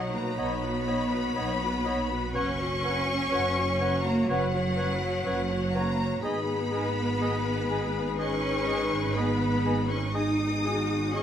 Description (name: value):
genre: cinematic, emotional film score for orchestra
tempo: 62 BPM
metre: 4/4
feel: rubato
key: G# minor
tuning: A4 = 436 Hz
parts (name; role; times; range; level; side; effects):
- warm symphonic violin section; melody; 0.0-11.2 s; F#5 to D#6; -37 LUFS; left 4 dB; none
- mellow clarinet; second line; 0.0-11.2 s; G#4 to C#5; -39 LUFS; left 3 dB; none
- warm oboe; second line; 0.0-11.2 s; C#5 to D#5; -39 LUFS; right 1 dB; none
- warm symphonic violin section; second line; 0.0-11.2 s; F#5 to D#6; -36 LUFS; left 4 dB; none
- warm studio viola section; accompaniment; 0.0-11.2 s; C#4 to C#5; -35 LUFS; equal; none
- warm French horn section; sustained chords; 0.0-11.2 s; B3 to C#5; -34 LUFS; left 4 dB; none
- rich symphonic cello section; bass; 0.0-11.2 s; F#3 to D#4; -30 LUFS; right 1 dB; none
- warm symphonic double bass section; bass; 0.0-11.2 s; F#1 to B1; -32 LUFS; right 3 dB; none
- large flute ensemble; second line; 0.4-11.2 s; F#5 to G#5; -39 LUFS; left 1 dB; none
room: light reverb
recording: none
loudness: -25 LUFS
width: side -9 dB against mid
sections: 0.0-11.2 A section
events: none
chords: 0.0 Badd9; 2.3 F#sus4; 6.2 G#m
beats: 0.38 1.36 | 2.34 3.32 4.29 5.26 | 6.23 7.21 8.18 9.16 | 10.14 11.14